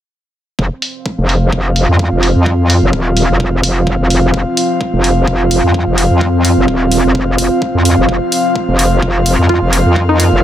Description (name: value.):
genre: bass house.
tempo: 128 BPM.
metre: 4/4.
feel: swing 55% on 16ths.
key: unclear.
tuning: A4 = 440 Hz.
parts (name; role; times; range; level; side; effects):
deep dark ambient pad; sustained chords; 1.4-10.4 s; C4 to C5; -18 LUFS; equal; chorus, built-in reverb, sidechain pumping.
metallic wobble bass; bass; 0.6-10.4 s; Eb1 to F2; -12 LUFS; equal; chorus, tube saturation, sidechain pumping.
electronic kick drum; drums; 0.6-10.1 s; none; -21 LUFS; equal; high-pass filter on kick, studio ambience.
airy breathy pad; texture; 0.6-10.4 s; C4 to F5; -17 LUFS; right 1 dB; chorus, sidechain pumping.
electronic hi-hat; drums; 0.8-10.3 s; none; -18 LUFS; equal; low-pass filter on hats, studio ambience.
glassy wavetable pluck; melody; 9.5-10.4 s; Eb4 to F4; -16 LUFS; equal; chorus, dub echo.
room: light reverb, digital ambience.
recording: none.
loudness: -10 LUFS.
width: side -11 dB against mid.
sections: 0.6-10.4 A section.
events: none.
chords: 0.6 F5.